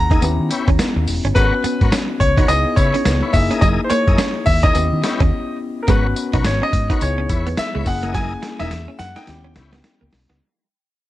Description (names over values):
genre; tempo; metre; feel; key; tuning
R&B, new jack swing; 106 BPM; 4/4; swing 60% on 16ths; G# minor; A4 = 441 Hz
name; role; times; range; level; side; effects
clear baby grand piano; melody; 0.0-10.1 s; A#4 to A#5; -22 LUFS; left 1 dB; analog delay
bell-like tine electric piano; accompaniment; 0.0-10.4 s; A#3 to B4; -25 LUFS; left 4 dB; none
vintage muted fingered electric bass; bass; 0.0-10.4 s; E1 to D#3; -20 LUFS; equal; none
direct-recorded clean electric guitar; riff; 0.1-10.4 s; F#3 to D#4; -25 LUFS; right 5 dB; lush chorus
tonewheel organ; stabs; 0.1-9.8 s; E4 to D#5; -28 LUFS; left 5 dB; chorus vibrato
dusty soul sampler-style drum kit; drums; 0.1-10.4 s; hi-hat, kick drum, snare drum, tambourine; -19 LUFS; equal; vintage 12-bit sampler grit, gated reverb
room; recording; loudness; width
light reverb; none; -15 LUFS; side -15 dB against mid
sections
0.0-5.9 A section; 5.9-10.4 B section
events
break 5.3-5.9; fade-out 5.9-10.4; drum fill 8.1-10.4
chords
0.2 D#7b9b13; 1.4 G#m11; 2.5 C#m7; 3.3 F#13; 4.8 D#7b9b13; 5.9 G#m11; 7.0 C#m7; 7.9 F#13; 9.3 D#7b9b13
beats
0.22 0.79 | 1.35 1.92 2.49 3.05 | 3.62 4.18 4.75 5.32 | 5.88 6.45 7.01 7.58 | 8.15 8.71 9.28 9.85